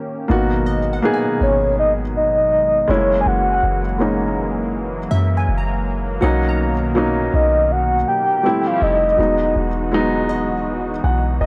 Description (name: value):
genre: contemporary R&B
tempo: 81 BPM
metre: 4/4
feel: swing 58% on 16ths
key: G# minor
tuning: A4 = 438 Hz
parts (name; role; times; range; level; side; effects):
- dark baby grand piano; accompaniment; 0.0-11.5 s; F#3 to F#5; -23 LUFS; equal; none
- warm analog pad; sustained chords; 0.0-11.5 s; B2 to G4; -28 LUFS; equal; lush chorus
- warm 808-style bass; bass; 0.3-11.5 s; E1 to F#2; -24 LUFS; equal; none
- glassy wavetable pluck; texture; 0.7-11.4 s; D#5 to A#5; -32 LUFS; equal; chorus, tape echo
- soft octave-layered synth lead; melody; 1.4-9.9 s; C#5 to G#5; -19 LUFS; equal; chorus, tremolo
room: little or no reverb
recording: dry, gritty hardware recording, transformer saturation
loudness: -18 LUFS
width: mono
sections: 0.3-11.5 A section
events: break 0.0; grand piano fill 10.7-11.5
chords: 0.3 G#m7; 2.9 F#9; 6.2 Bmaj7; 8.4 Fmaj9; 9.2 Emaj9